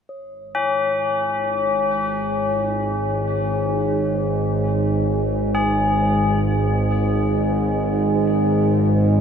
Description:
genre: ambient.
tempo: free time.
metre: none.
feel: none.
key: unclear.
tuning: A4 = 437 Hz.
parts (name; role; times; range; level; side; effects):
bowed-like drone; drone; 0.9-9.2 s; G#1 to G#2; -19 LUFS; right 1 dB; built-in reverb.
quartz singing bowl; texture; 0.1-9.2 s; none; barely audible; none; none.
tubular bells; arpeggios; 0.5-9.2 s; C#4 to G#4; -23 LUFS; left 2 dB; tape echo.
room: wet huge ambient reverb, RT60 8.0 s.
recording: none.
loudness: -18 LUFS.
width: side -7 dB against mid.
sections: 0.1-9.2 A section.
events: filter sweep on synth drone 0.1-9.2.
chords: none.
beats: free time.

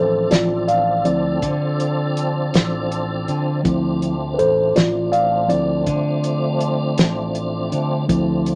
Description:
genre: slow blues.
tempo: 54 BPM (dotted quarters).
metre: 12/8.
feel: straight.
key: D minor.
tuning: A4 = 440 Hz.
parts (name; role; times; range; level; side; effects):
mellow tine electric piano; accompaniment; 0.0-8.6 s; F3 to F5; -22 LUFS; equal; none.
tonewheel organ; sustained chords; 0.0-8.6 s; F3 to A4; -27 LUFS; equal; slow rotary speaker, overdrive, chorus vibrato.
modern bright fingered electric bass; bass; 0.0-8.6 s; A1 to D3; -26 LUFS; equal; none.
warm soul drum kit; drums; 0.3-8.6 s; hi-hat, kick drum, snare drum; -22 LUFS; equal; none.
room: moderate studio reverb, RT60 0.5 s.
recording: none.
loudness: -19 LUFS.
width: mono.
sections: 0.0-8.6 A section.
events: tine electric piano solo 0.0-8.6.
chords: 0.0 Dm7.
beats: 0.31 1.43 2.54 | 3.65 4.76 5.87 6.99 | 8.10.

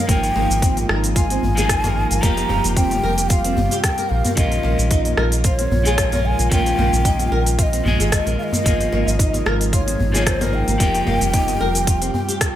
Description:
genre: organic downtempo.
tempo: 112 BPM.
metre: 4/4.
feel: swing 54% on 16ths.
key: Bb dorian.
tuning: A4 = 440 Hz.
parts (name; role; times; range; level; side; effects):
breathy mellow ney; melody; 0.0-12.6 s; C5 to Bb5; -23 LUFS; left 1 dB; digital delay.
clean electric guitar; accompaniment; 0.0-12.1 s; Eb3 to Ab4; -26 LUFS; left 1 dB; sidechain pumping.
airy breathy pad; sustained chords; 0.0-12.6 s; C3 to G4; -28 LUFS; right 1 dB; chorus, sidechain pumping.
flamenco guitar; arpeggios; 0.0-12.4 s; Bb3 to Bb4; -26 LUFS; right 1 dB; lush chorus, digital delay.
round analog bass; bass; 0.1-12.1 s; F1 to Bb1; -21 LUFS; equal; sidechain pumping.
electronic kick drum; drums; 0.1-12.5 s; none; -19 LUFS; equal; none.
organic electronic drum kit; drums; 0.1-12.5 s; hi-hat, rim click, shaker; -24 LUFS; equal; none.
djembe; percussion; 0.1-12.3 s; none; -28 LUFS; left 1 dB; none.
room: light reverb, digital ambience.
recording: bright 1980s-style digital production.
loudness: -16 LUFS.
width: side -12 dB against mid.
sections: 0.0-12.6 A section.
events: none.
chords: 0.0 Ab5; 2.2 Fsus2; 4.4 Bbm; 8.7 Ab6; 10.8 Fsus2.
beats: | 0.09 0.62 1.16 1.70 | 2.23 2.77 3.30 3.84 | 4.37 4.91 5.45 5.98 | 6.52 7.05 7.59 8.12 | 8.66 9.20 9.73 10.27 | 10.80 11.34 11.87 12.41.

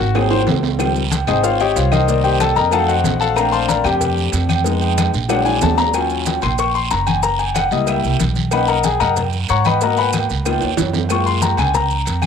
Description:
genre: Afro-Cuban jazz.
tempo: 186 BPM.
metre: 4/4.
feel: straight.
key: unclear.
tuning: A4 = 439 Hz.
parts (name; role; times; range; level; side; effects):
clear concert grand piano; accompaniment; 0.0-12.3 s; Eb3 to Db6; -18 LUFS; left 9 dB; none.
upright bass; bass; 0.0-12.3 s; Gb1 to Ab2; -20 LUFS; right 2 dB; none.
guiro; percussion; 0.0-12.3 s; none; -29 LUFS; right 13 dB; none.
cowbell; percussion; 0.1-12.2 s; none; -30 LUFS; left 10 dB; none.
claves; percussion; 0.2-12.3 s; none; -34 LUFS; left 10 dB; none.
congas; percussion; 0.2-12.3 s; none; -24 LUFS; left 5 dB; none.
timbales and agogo bells; percussion; 0.2-12.3 s; none; -23 LUFS; right 12 dB; none.
maracas; percussion; 0.8-12.3 s; none; -30 LUFS; right 14 dB; none.
room: moderate spring reverb, RT60 1.4 s, small room ambience.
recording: 1960s-style stereo with parts hard left and right.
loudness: -14 LUFS.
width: side -7 dB against mid.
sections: 0.0-5.9 A section; 5.9-12.3 A section.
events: grand piano solo 0.0-12.3; drum fill 0.2-0.8, 5.3-5.9, 10.6-11.1.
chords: 0.2 Ab9; 0.8 Dbmaj9#11; 2.1 Cm7; 2.7 F7b9; 3.4 Bbmaj9; 4.7 Fm7b5; 5.3 Bbaug7; 5.9 Ebm7; 7.2 Gb7b9; 8.5 Bmaj9; 9.8 Abm9; 10.5 Db13; 11.1 Gbmaj7.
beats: 0.15 0.47 | 0.80 1.12 1.44 1.76 | 2.08 2.41 2.73 3.05 | 3.37 3.69 4.02 4.34 | 4.66 4.98 5.30 5.63 | 5.95 6.27 6.59 6.91 | 7.24 7.56 7.88 8.20 | 8.53 8.85 9.17 9.49 | 9.81 10.13 10.46 10.78 | 11.10 11.42 11.74 12.06.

